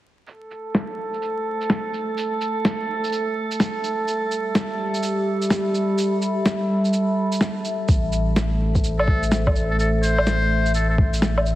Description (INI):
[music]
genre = future garage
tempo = 126 BPM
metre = 4/4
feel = swing 64% on 16ths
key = A minor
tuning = A4 = 440 Hz
[part]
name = warbly tape-like pad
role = sustained chords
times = 0.3-11.6 s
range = G3 to B5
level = -25 LUFS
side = equal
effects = chorus, built-in reverb, sidechain pumping
[part]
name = electronic shaker, snare drum and woodblock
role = drums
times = 0.3-11.6 s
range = none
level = -24 LUFS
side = equal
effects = overdrive, low-pass filter on perc, low-pass filter on snare, low-pass filter on room
[part]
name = drifting glass-harmonics texture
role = texture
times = 0.4-7.9 s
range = A4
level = -28 LUFS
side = right 3 dB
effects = chorus, built-in reverb
[part]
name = warm sub bass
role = bass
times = 7.9-11.6 s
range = A1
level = -22 LUFS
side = equal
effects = sidechain pumping
[part]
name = electronic kick drum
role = drums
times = 7.9-11.1 s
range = none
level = -20 LUFS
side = equal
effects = overdrive
[part]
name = trumpet with metal mute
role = melody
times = 9.0-11.0 s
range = A4 to C5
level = -25 LUFS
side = left 1 dB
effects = tape echo
[sound]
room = moderate lush hall reverb, RT60 2.1 s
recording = heavily compressed radio sound, multiband compression, vinyl crackle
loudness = -19 LUFS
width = side -15 dB against mid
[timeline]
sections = 0.3-7.9 A section; 7.9-11.6 B section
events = fade-in on ambient pad 0.3-7.9; filter sweep on drum 0.3-7.9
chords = 0.3 Am; 4.1 Em/G; 7.9 Amadd9